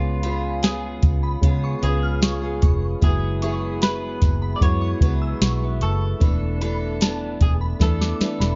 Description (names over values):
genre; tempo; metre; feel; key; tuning
indie pop, bedroom pop; 75 BPM; 4/4; straight; unclear; A4 = 440 Hz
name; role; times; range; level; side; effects
clean electric guitar; melody; 0.0-8.6 s; E#4 to D5; -34 LUFS; equal; subtle chorus
picked steel-string acoustic guitar; accompaniment; 0.0-8.6 s; C#3 to A4; -33 LUFS; equal; lush chorus, vibrato effect
soft electric-piano-like synth keys; accompaniment; 0.0-8.6 s; G#3 to B4; -33 LUFS; equal; chorus
vintage muted fingered electric bass; bass; 0.0-8.6 s; E1 to C#3; -26 LUFS; equal; none
glassy synth bell; second line; 0.2-8.6 s; G#5 to E#6; -38 LUFS; equal; ensemble chorus, analog delay
soft vintage rhythm box; drums; 0.2-8.6 s; hi-hat, kick drum, snare drum; -22 LUFS; equal; none
tambourine; percussion; 0.2-8.4 s; none; -48 LUFS; equal; none
room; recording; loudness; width
digital ambience; dark, warm production, nothing above 7.5 kHz; -21 LUFS; mono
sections
0.0-8.6 A section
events
drum fill 7.8-8.6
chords
0.0 C#7; 3.0 F#9sus4; 6.2 E7sus4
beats
0.63 1.43 2.23 | 3.02 3.82 4.62 5.41 | 6.21 7.01 7.81